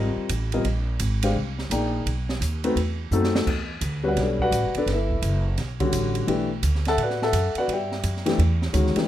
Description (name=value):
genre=modal jazz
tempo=170 BPM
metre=4/4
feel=swing 63% on 8ths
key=E dorian from 3.5 s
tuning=A4 = 440 Hz
part: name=warm grand piano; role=accompaniment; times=0.0-9.1 s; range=D3 to A5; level=-24 LUFS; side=left 2 dB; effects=none
part: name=upright bass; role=bass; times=0.0-9.0 s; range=E1 to A2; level=-25 LUFS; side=right 1 dB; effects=none
part: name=open jazz drum kit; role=drums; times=0.3-9.1 s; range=crash cymbal, hi-hat, kick drum, ride cymbal, snare drum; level=-31 LUFS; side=right 3 dB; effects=none
room=light reverb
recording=minimal, uncompressed stereo recording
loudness=-22 LUFS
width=side -12 dB against mid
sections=0.0-3.5 A section; 3.5-9.1 B section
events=drum fill 3.1-3.5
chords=0.0 Bb9sus4; 2.1 B7b9; 3.5 Em11